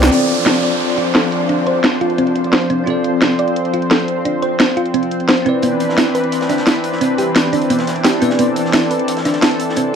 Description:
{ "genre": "liquid drum and bass", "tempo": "174 BPM", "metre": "4/4", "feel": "straight", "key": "D dorian", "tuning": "A4 = 439 Hz", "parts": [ { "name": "bell-like tine electric piano", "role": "accompaniment", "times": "0.0-10.0 s", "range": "C4 to D5", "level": "-21 LUFS", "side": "left 1 dB", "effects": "fast stereo tremolo, tape echo" }, { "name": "lush unison pad", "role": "sustained chords", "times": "0.0-10.0 s", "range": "E3 to C5", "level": "-19 LUFS", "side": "left 1 dB", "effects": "chorus" }, { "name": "thumb-piano-like synth pluck", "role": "arpeggios", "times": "0.0-9.9 s", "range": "B3 to D5", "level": "-19 LUFS", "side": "right 2 dB", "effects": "chorus, cassette tape, digital delay" }, { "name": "garage drum kit", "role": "drums", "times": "0.0-9.8 s", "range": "hi-hat, shaker, snare drum", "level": "-15 LUFS", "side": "equal", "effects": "low-pass filter on hats, low-pass filter on cymbals, low-pass filter on perc, low-pass filter on snare" }, { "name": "downlifter", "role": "sound effects", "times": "0.1-2.9 s", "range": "none", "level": "-24 LUFS", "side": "equal", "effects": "none" }, { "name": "crunchy breakbeat drum kit", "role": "drums", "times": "5.6-9.8 s", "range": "hi-hat, snare drum", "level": "-29 LUFS", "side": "equal", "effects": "high-pass filter on hats, high-pass filter on snare, high-pass filter on room" } ], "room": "light reverb", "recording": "none", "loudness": "-13 LUFS", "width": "side -7 dB against mid", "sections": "0.1-10.0 A section", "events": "band accent 0.0", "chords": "0.1 Dm7; 5.5 Cmaj9" }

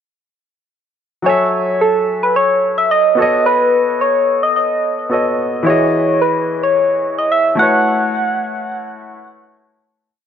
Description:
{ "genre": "amapiano", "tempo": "109 BPM", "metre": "4/4", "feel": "straight", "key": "unclear", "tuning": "A4 = 438 Hz", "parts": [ { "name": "warm grand piano", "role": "accompaniment", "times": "1.2-10.1 s", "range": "E3 to G#5", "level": "-18 LUFS", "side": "left 1 dB", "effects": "none" }, { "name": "soft struck synth lead", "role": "melody", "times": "1.3-9.5 s", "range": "A4 to F#5", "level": "-14 LUFS", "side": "equal", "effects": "chorus, phaser, digital delay" } ], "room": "light reverb, studio reverb", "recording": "nothing above 10.6 kHz", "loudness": "-12 LUFS", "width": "side -8 dB against mid", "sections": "1.3-10.1 groove", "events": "fade-out 7.9-10.1", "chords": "1.3 F#m9; 3.2 B7; 5.7 Emaj7; 7.6 A6" }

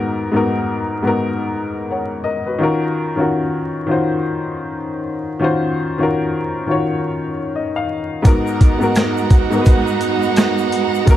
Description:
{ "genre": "hip hop, boom-bap hip-hop", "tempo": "85 BPM", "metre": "4/4", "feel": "swing 60% on 16ths", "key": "G# dorian", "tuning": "A4 = 440 Hz", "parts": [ { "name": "warm upright piano", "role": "accompaniment", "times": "0.0-11.2 s", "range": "G#2 to F#5", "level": "-18 LUFS", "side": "left 2 dB", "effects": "none" }, { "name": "egg shaker", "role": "percussion", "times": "8.2-11.2 s", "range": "none", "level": "-42 LUFS", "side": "left 10 dB", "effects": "none" }, { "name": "warm studio string section", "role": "sustained chords", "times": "8.3-11.2 s", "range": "G#3 to A#5", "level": "-23 LUFS", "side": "equal", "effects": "none" }, { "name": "warm saxophone section", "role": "stabs", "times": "8.3-11.2 s", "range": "B3 to F#4", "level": "-20 LUFS", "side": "right 13 dB", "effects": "analog delay" }, { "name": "boom bap sampler-style drum kit", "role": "drums", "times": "8.3-11.2 s", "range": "hi-hat, kick drum, rim click, snare drum", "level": "-12 LUFS", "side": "equal", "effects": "none" } ], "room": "light reverb, studio reverb", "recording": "dark, warm production, vinyl crackle", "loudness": "-16 LUFS", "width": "side -12 dB against mid", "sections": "0.0-8.2 A section; 8.2-11.2 B section", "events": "none", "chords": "0.0 G#m9; 2.6 D#m9; 8.2 G#m9" }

